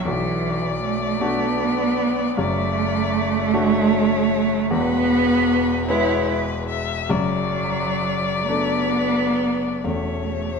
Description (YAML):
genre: classical, slow romantic movement for piano trio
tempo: 42-54 BPM (dotted quarters)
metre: 6/8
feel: rubato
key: unclear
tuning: A4 = 440 Hz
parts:
  - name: warm violin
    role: melody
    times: 0.0-10.6 s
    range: B4 to E5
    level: -26 LUFS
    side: left 8 dB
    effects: none
  - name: warm cello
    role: second line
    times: 0.0-10.6 s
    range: E3 to E4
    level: -21 LUFS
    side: right 3 dB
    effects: none
  - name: warm grand piano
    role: accompaniment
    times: 0.0-10.6 s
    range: E1 to B4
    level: -24 LUFS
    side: left 1 dB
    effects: none
room: moderate scoring stage reverb, RT60 1.9 s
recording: none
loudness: -18 LUFS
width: side -5 dB against mid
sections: 0.0-10.6 A section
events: none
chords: 0.1 Bm7; 2.4 D/F#; 4.7 E; 7.1 D/F#; 9.8 A/E